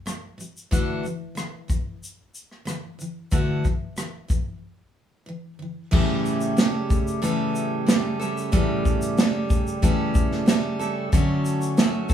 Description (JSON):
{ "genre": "acoustic pop", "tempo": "92 BPM", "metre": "4/4", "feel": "straight", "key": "A mixolydian", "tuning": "A4 = 440 Hz", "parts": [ { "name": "picked steel-string acoustic guitar", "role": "accompaniment", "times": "0.1-12.1 s", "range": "A2 to A4", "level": "-25 LUFS", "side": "equal", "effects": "none" }, { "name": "natural country drum kit", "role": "drums", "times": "0.1-12.1 s", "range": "crash cymbal, kick drum, rim click, shaker, snare drum", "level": "-22 LUFS", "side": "equal", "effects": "none" }, { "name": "tonewheel organ", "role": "sustained chords", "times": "5.9-12.1 s", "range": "C#3 to G4", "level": "-29 LUFS", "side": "equal", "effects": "slow rotary speaker" } ], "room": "moderate studio reverb, RT60 0.7 s", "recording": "band playing live in one room, small room ambience", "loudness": "-21 LUFS", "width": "side -9 dB against mid", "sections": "0.0-5.9 A section; 5.9-12.1 B section", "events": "break 4.6-5.9", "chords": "0.0 G/B; 0.7 Dadd9; 5.9 A7; 11.1 Dmaj7" }